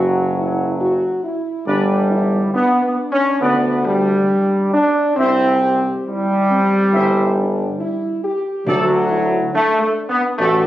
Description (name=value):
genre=classical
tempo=69 BPM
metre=4/4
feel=straight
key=unclear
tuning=A4 = 441 Hz
part: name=dark trumpet section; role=melody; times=0.0-10.7 s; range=F#3 to E5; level=-24 LUFS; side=left 1 dB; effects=none
part: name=mellow French horn section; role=sustained chords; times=0.0-10.7 s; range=C4 to G4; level=-23 LUFS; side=left 1 dB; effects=none
part: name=warm trombone section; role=sustained chords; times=0.0-10.7 s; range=F#3 to D4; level=-16 LUFS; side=equal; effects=none
part: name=clear tuba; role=bass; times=0.0-10.7 s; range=F#1 to D2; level=-21 LUFS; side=equal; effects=none
part: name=timpani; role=percussion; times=8.7-9.9 s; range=D3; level=-28 LUFS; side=left 1 dB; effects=none
room=light reverb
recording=recorded on a phone in the room, club reverb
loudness=-15 LUFS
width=side -14 dB against mid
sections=0.0-10.7 A section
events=none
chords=0.0 N.C.; 1.7 G; 5.2 C; 8.7 D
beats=0.80 | 1.68 2.55 3.42 4.30 | 5.18 6.06 6.93 7.80 | 8.67 9.53 10.40